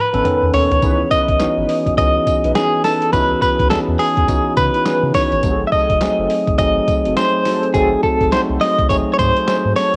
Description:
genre	R&B, new jack swing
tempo	104 BPM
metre	4/4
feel	swing 61% on 16ths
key	C# minor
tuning	A4 = 439 Hz
part	direct-recorded clean electric guitar	melody	0.0-10.0 s	G#4 to E5	-19 LUFS	equal	tremolo, cassette tape
part	mellow tine electric piano	accompaniment	0.1-10.0 s	D#3 to B4	-23 LUFS	equal	cassette tape
part	mellow synth brass	stabs	0.1-9.9 s	B#3 to B4	-31 LUFS	equal	none
part	round analog bass	bass	0.1-10.0 s	F#1 to C#3	-25 LUFS	equal	none
part	boom bap sampler-style drum kit	drums	0.1-10.0 s	handclaps, hi-hat, kick drum, snare drum, tambourine, toms	-24 LUFS	equal	none
room	moderate spring reverb, RT60 2.0 s, digital ambience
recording	home recording on cassette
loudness	-16 LUFS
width	mono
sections	0.8-10.0 A section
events	drum fill 0.0-0.8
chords	0.0 B9; 0.8 C#m9; 5.4 G#7b9

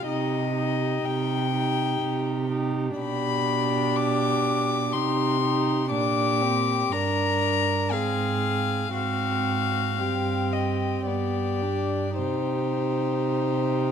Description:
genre	classical, slow romantic movement for string quartet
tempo	46-63 BPM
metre	3/4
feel	rubato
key	C minor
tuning	A4 = 439 Hz
part	rich violin	melody	0.0-13.9 s	C5 to D6	-28 LUFS	left 9 dB	none
part	warm violin	second line	0.0-13.9 s	Gb4 to Bb4	-30 LUFS	left 4 dB	none
part	warm viola	accompaniment	0.0-13.9 s	B3 to Eb4	-29 LUFS	right 4 dB	none
part	rich cello	bass	0.1-13.9 s	G2 to C3	-28 LUFS	right 5 dB	none
room	moderate recital hall reverb, RT60 1.5 s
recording	none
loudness	-23 LUFS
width	side -7 dB against mid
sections	0.0-13.9 A section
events	none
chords	0.1 Cm; 3.0 G/B; 4.9 Cm; 5.9 Gm/Bb; 7.9 Fm/Ab; 10.0 Cm/G; 11.1 G; 12.2 Cm

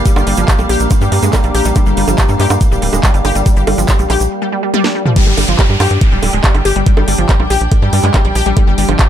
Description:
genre	psychedelic trance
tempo	141 BPM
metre	4/4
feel	straight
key	G minor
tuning	A4 = 440 Hz
part	overtone-sweeping drone	sustained chords	0.0-4.3 s	G3 to Bb3	-21 LUFS	equal	chorus, built-in reverb, vintage 12-bit sampler grit, sidechain pumping
part	wide unison pluck	riff	0.0-9.0 s	F3 to G4	-18 LUFS	moving between left 4 dB and right 5 dB	auto-pan, sidechain pumping, digital delay
part	tight sequencer bass	bass	0.0-9.0 s	D1 to G2	-15 LUFS	equal	none
part	warm studio string section	texture	0.0-9.1 s	D4 to G5	-23 LUFS	left 2 dB	sidechain pumping
part	drum and bass drum kit	drums	0.1-9.1 s	bongos, crash cymbal, handclaps, hi-hat, snare drum, toms	-18 LUFS	right 1 dB	none
part	electronic kick drum	drums	0.1-9.1 s	none	-11 LUFS	equal	none
part	tube shaker	percussion	0.1-4.3 s	none	-27 LUFS	right 4 dB	none
part	downlifter	sound effects	5.2-8.6 s	none	-22 LUFS	equal	none
room	little or no reverb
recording	none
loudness	-10 LUFS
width	side -10 dB against mid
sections	0.0-5.2 A section; 5.2-9.1 B section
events	break 4.3-5.2; drum fill 4.7-5.2; drop 5.2-9.1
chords	0.0 G5

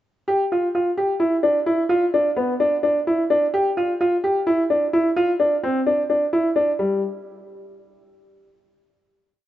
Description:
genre	progressive instrumental, progressive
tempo	258 BPM (eighths)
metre	7/8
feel	straight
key	G mixolydian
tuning	A4 = 441 Hz
part	clear concert grand piano	solo	0.3-7.0 s	G3 to G4	-18 LUFS	equal	none
room	moderate plate reverb, RT60 2.9 s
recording	rough home demo mix, nothing above 7.8 kHz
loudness	-18 LUFS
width	side -13 dB against mid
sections	0.3-6.8 groove; 6.8-8.4 final note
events	none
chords	none

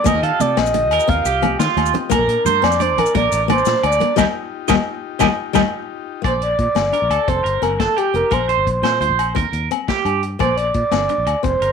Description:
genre	highlife guitar band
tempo	116 BPM (dotted quarters)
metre	12/8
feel	straight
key	Bb major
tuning	A4 = 440 Hz
part	breathy flute-like synth lead	melody	0.0-11.7 s	G4 to F5	-19 LUFS	right 1 dB	chorus
part	fingerpicked steel-string acoustic guitar	accompaniment	0.0-11.7 s	D3 to F4	-24 LUFS	left 12 dB	none
part	combo organ	sustained chords	0.0-6.2 s	Bb3 to A5	-31 LUFS	left 13 dB	spring reverb
part	electric guitar at the edge of break-up	arpeggios	0.0-11.7 s	F4 to Eb5	-21 LUFS	right 13 dB	lush chorus, slapback echo
part	fingered electric bass	bass	0.1-11.7 s	F1 to Eb3	-23 LUFS	equal	none
part	vintage drum kit	drums	0.1-11.7 s	hi-hat, kick drum, snare drum	-25 LUFS	left 4 dB	none
part	agogo bells	percussion	0.1-11.4 s	none	-25 LUFS	left 14 dB	none
part	congas	percussion	0.1-5.6 s	none	-25 LUFS	right 12 dB	none
part	maracas	percussion	0.1-5.6 s	none	-31 LUFS	left 17 dB	none
room	light reverb, studio reverb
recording	1960s-style stereo with parts hard left and right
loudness	-15 LUFS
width	side -6 dB against mid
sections	0.0-6.2 A section; 6.2-11.7 B section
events	band accent 4.2-6.2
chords	0.1 Ebadd9; 2.1 Bbmaj7; 4.2 Ebadd9; 6.2 Bbadd9; 7.3 Fsus2; 8.3 Bbsus2; 9.4 Eb; 10.4 Bbadd9

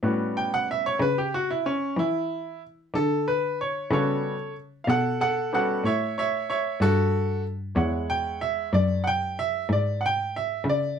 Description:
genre	slow blues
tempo	62 BPM (dotted quarters)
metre	12/8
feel	straight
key	unclear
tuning	A4 = 440 Hz
part	bright upright piano	accompaniment	0.0-11.0 s	G3 to G5	-25 LUFS	right 1 dB	none
part	warm cello	bass	0.0-11.0 s	E2 to E3	-26 LUFS	left 1 dB	none
room	moderate studio ambience, RT60 0.5 s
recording	band playing live in one room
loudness	-23 LUFS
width	side -7 dB against mid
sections	0.0-11.0 A section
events	upright piano solo 0.0-11.0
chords	0.0 A13; 7.8 E13

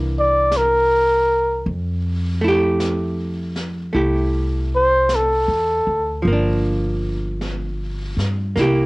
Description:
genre	jazz ballad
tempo	52 BPM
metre	4/4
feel	swing 66% on 8ths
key	F major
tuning	A4 = 440 Hz
part	archtop guitar, miked and amplified	accompaniment	0.0-8.9 s	E3 to G4	-21 LUFS	right 1 dB	cassette tape
part	upright bass	bass	0.0-8.9 s	G1 to G2	-22 LUFS	equal	none
part	warm flugelhorn	melody	0.2-6.3 s	A4 to D5	-16 LUFS	equal	cassette tape
part	jazz brush drum kit	drums	0.5-8.9 s	brushed snare drum, hi-hat, snare drum	-34 LUFS	equal	cassette tape
room	light reverb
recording	home recording on cassette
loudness	-17 LUFS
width	side -25 dB against mid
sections	0.0-8.9 A section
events	flugelhorn solo 0.0-8.9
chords	0.0 C9; 1.7 Fmaj9; 6.2 Gm7

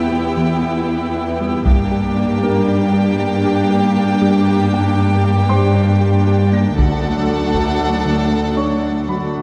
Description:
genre	cinematic, hybrid orchestral and electronic film score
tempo	117 BPM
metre	5/4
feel	straight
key	unclear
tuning	A4 = 443 Hz
part	rich chamber violin section	second line	0.0-9.3 s	G4 to G5	-26 LUFS	equal	none
part	warm symphonic viola section	accompaniment	0.0-9.3 s	A3 to E4	-25 LUFS	equal	none
part	phased analog pad	sustained chords	0.0-9.3 s	E3 to E5	-25 LUFS	equal	phaser, chorus
part	warm symphonic cello section	bass	0.0-9.3 s	D2 to G2	-19 LUFS	equal	none
part	warm grand piano	texture	0.0-9.4 s	A3 to Bb6	-30 LUFS	equal	tape echo
part	thumb-piano-like synth pluck	arpeggios	0.1-9.2 s	D3 to G4	-26 LUFS	equal	chorus, tape echo
part	taiko ensemble	drums	1.7-2.6, 6.8-7.8 s	none	-21 LUFS	equal	none
room	moderate scoring stage reverb, RT60 1.8 s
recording	none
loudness	-16 LUFS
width	mono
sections	0.0-9.4 A section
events	none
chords	0.0 Em; 1.7 Gm; 6.8 D

